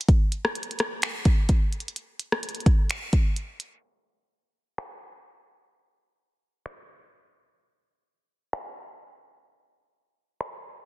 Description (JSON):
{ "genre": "hip hop", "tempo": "128 BPM", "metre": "4/4", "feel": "half-time", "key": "none", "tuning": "none", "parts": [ { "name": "glitchy drum kit", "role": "drums", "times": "0.0-10.5 s", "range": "finger snaps, hi-hat, kick drum, rim click", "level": "-22 LUFS", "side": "equal", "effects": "vintage 12-bit sampler grit, soft clipping on snare" } ], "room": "little or no reverb", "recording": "dense, heavily limited modern master, low-pass filter", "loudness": "-23 LUFS", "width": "side -19 dB against mid", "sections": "0.0-3.8 A section; 3.8-10.9 B section", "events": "break 3.8-10.9", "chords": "none", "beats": "| 0.08 0.55 1.02 1.49 | 1.96 2.43 2.90 3.37 | 3.83 4.30 4.77 5.24 | 5.71 6.18 6.65 7.12 | 7.58 8.05 8.52 8.99 | 9.46 9.93 10.40" }